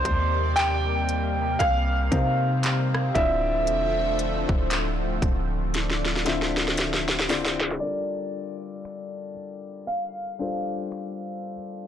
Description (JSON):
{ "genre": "contemporary R&B", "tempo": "58 BPM", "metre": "4/4", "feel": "swing 58% on 16ths", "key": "unclear", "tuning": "A4 = 440 Hz", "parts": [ { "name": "warm grand piano", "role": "melody", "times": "0.0-11.9 s", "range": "C5 to G5", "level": "-27 LUFS", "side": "right 2 dB", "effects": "tape echo" }, { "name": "felt-muted upright piano", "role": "accompaniment", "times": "0.0-11.9 s", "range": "C3 to E5", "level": "-32 LUFS", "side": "left 6 dB", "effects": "none" }, { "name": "lush unison pad", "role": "sustained chords", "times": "0.0-7.8 s", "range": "C3 to E5", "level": "-31 LUFS", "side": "equal", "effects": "chorus, phaser" }, { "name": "warm 808-style bass", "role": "bass", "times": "0.0-7.8 s", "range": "C1 to C3", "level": "-28 LUFS", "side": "equal", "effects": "none" }, { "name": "trap drum kit", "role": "drums", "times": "0.1-11.2 s", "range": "finger snaps, handclaps, hi-hat, kick drum, rim click, snare drum", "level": "-26 LUFS", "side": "equal", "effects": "soft clipping on snare" } ], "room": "light reverb", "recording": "blown-out, overdriven recording, overdrive, low-pass filter", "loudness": "-22 LUFS", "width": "side -9 dB against mid", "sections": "0.0-7.8 A section; 7.8-11.9 B section", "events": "drum fill 5.7-7.8", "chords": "0.0 Cm9; 3.2 Dm9; 7.8 Gm9" }